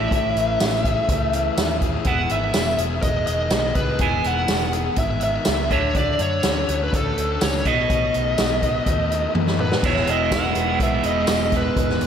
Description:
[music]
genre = indie rock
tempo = 124 BPM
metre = 4/4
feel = straight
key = E major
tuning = A4 = 441 Hz
[part]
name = smooth overdriven lead guitar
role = melody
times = 0.0-12.1 s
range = A4 to G#5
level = -23 LUFS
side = equal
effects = slapback echo
[part]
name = biting overdriven guitar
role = riff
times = 0.0-12.1 s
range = A2 to E4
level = -27 LUFS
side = right 8 dB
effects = wide subtle chorus, slapback echo
[part]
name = fuzz guitar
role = riff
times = 0.0-12.1 s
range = E2 to G#4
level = -27 LUFS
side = left 7 dB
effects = distortion, slapback echo
[part]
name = picked electric bass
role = bass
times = 0.0-12.1 s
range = E1 to F#2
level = -26 LUFS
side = equal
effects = none
[part]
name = vintage drum kit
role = drums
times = 0.1-12.1 s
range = crash cymbal, hi-hat, kick drum, snare drum, tambourine, toms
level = -23 LUFS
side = equal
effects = none
[sound]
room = moderate lush hall reverb, RT60 2.2 s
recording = big arena sound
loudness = -18 LUFS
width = side -8 dB against mid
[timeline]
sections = 0.0-9.8 A section; 9.8-12.1 B section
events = drum fill 9.3-9.8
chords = 0.0 Amaj7; 2.1 Emaj7; 5.7 Dmaj7; 7.7 B7; 9.8 Emaj7

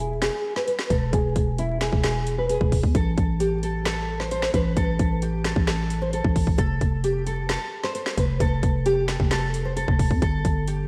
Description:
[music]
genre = hip hop, trap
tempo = 132 BPM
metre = 4/4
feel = half-time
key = unclear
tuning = A4 = 442 Hz
[part]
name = nylon-string guitar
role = melody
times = 0.0-10.9 s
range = E4 to C5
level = -29 LUFS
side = equal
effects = analog chorus, low-pass filter, analog delay
[part]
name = growling 808-style bass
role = bass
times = 0.0-10.9 s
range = E1 to F2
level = -27 LUFS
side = equal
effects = none
[part]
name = trap drum kit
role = drums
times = 0.2-10.8 s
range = finger snaps, hi-hat, kick drum, snare drum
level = -27 LUFS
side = equal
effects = none
[sound]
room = moderate lush hall reverb, RT60 1.7 s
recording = dreamy mix soaked in reverb, vinyl crackle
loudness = -24 LUFS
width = mono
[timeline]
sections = 0.0-10.9 A section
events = filter sweep on nylon-string guitar 0.0-2.9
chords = 0.0 E; 2.9 N.C.; 6.6 F; 10.2 Gsus2

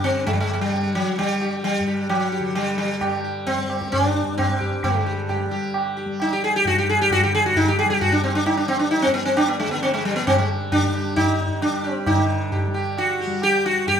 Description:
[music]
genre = indian classical, Hindustani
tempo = 132 BPM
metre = 4/4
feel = straight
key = unclear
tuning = A4 = 440 Hz
[part]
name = sitar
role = melody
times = 0.0-14.0 s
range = F#3 to Ab4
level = -20 LUFS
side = equal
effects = none
[part]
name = tanpura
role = drone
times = 0.0-14.0 s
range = G2 to G3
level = -30 LUFS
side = left 3 dB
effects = none
[part]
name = tabla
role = percussion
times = 0.3-14.0 s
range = none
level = -24 LUFS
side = right 1 dB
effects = none
[sound]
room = moderate recital hall reverb, RT60 1.6 s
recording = minimal, uncompressed stereo recording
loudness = -19 LUFS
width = side -8 dB against mid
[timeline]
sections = 0.0-12.1 A section; 12.1-14.0 B section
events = none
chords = none

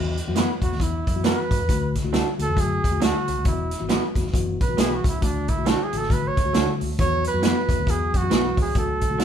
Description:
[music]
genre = uptempo 1960s-style soul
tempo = 136 BPM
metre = 4/4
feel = swing 60% on 8ths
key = E mixolydian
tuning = A4 = 436 Hz
[part]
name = mellow tine electric piano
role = accompaniment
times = 0.0-9.2 s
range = D3 to F#4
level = -29 LUFS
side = left 4 dB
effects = none
[part]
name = vintage muted fingered electric bass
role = bass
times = 0.0-9.2 s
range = E1 to G#2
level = -28 LUFS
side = left 1 dB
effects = none
[part]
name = vintage drum kit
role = drums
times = 0.2-9.2 s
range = hi-hat, kick drum, snare drum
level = -24 LUFS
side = equal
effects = none
[part]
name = electric guitar through a small old amp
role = stabs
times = 0.4-9.2 s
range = A3 to B4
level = -26 LUFS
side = right 3 dB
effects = none
[part]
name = warm trumpet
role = melody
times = 0.6-9.2 s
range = D4 to C#5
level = -26 LUFS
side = right 3 dB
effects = none
[part]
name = mellow tonewheel organ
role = sustained chords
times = 7.0-9.2 s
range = D3 to F#4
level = -33 LUFS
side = equal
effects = none
[sound]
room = moderate large studio reverb, RT60 0.9 s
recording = band playing live in one room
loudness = -20 LUFS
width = side -8 dB against mid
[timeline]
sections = 0.0-9.2 A section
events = trumpet solo 0.0-9.2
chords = 0.0 Esus2; 1.7 D; 3.5 Esus2; 5.2 D; 7.0 Esus2

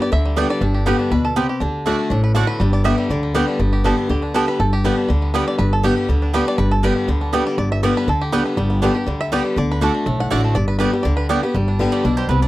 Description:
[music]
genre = bluegrass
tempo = 241 BPM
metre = 4/4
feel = swing 54% on 8ths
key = G major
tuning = A4 = 435 Hz
[part]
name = bluegrass banjo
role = melody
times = 0.0-12.5 s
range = G3 to F#5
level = -25 LUFS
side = right 2 dB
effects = none
[part]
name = picked swing-style acoustic guitar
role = accompaniment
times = 0.0-12.5 s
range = G2 to G4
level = -20 LUFS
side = left 2 dB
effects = none
[part]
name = upright bass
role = bass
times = 0.1-12.5 s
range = G1 to D2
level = -19 LUFS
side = equal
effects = none
[part]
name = mandolin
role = stabs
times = 0.4-12.5 s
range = A3 to G5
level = -23 LUFS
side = right 7 dB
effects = none
[sound]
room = little or no reverb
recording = dry, close 1970s-style studio recording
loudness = -16 LUFS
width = side -16 dB against mid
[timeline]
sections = 0.0-3.6 A section; 3.6-11.6 A section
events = five-string banjo solo 0.0-11.6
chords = 0.0 G; 1.6 D; 2.6 G; 9.6 D; 10.6 G

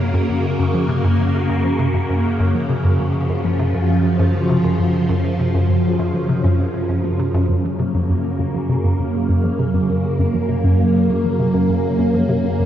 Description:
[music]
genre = ambient, sequencer-driven space music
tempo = 100 BPM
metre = 4/4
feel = straight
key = Gb lydian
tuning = A4 = 440 Hz
[part]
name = phased string machine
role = sustained chords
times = 0.0-12.7 s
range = Gb2 to Bb3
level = -18 LUFS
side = equal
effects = ensemble chorus, phaser
[part]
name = hollow square pluck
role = riff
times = 0.0-12.6 s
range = Gb2 to F3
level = -20 LUFS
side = equal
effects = chorus, tape echo
[sound]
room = wet cathedral reverb, RT60 5.4 s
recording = dreamy mix soaked in reverb, nothing above 7.7 kHz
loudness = -16 LUFS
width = side -11 dB against mid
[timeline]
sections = 0.0-7.5 A section; 7.5-12.7 B section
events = filter sweep on synth arpeggio sound 0.0-7.5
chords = 0.0 Gb

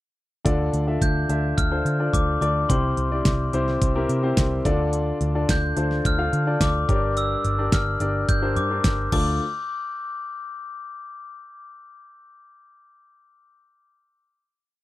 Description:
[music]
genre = piano-driven pop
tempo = 107 BPM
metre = 4/4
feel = straight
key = D minor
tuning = A4 = 440 Hz
[part]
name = clear concert grand piano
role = accompaniment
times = 0.4-9.4 s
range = D2 to F5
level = -25 LUFS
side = left 2 dB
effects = none
[part]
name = vintage muted picked electric bass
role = bass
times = 0.5-9.4 s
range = G1 to D3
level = -25 LUFS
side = equal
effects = none
[part]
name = pop drum kit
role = drums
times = 0.5-9.3 s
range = crash cymbal, hi-hat, kick drum, snare drum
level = -23 LUFS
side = equal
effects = none
[part]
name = glockenspiel with soft plastic mallets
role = melody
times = 1.0-9.4 s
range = C6 to G6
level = -28 LUFS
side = left 2 dB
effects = none
[sound]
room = little or no reverb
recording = dry, close 1970s-style studio recording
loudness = -20 LUFS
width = side -16 dB against mid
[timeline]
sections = 0.5-9.4 verse; 9.4-11.6 final hit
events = none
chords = 0.5 Dm; 2.7 C; 4.6 Dm; 6.9 Gm; 9.1 Dm; 9.4 N.C.

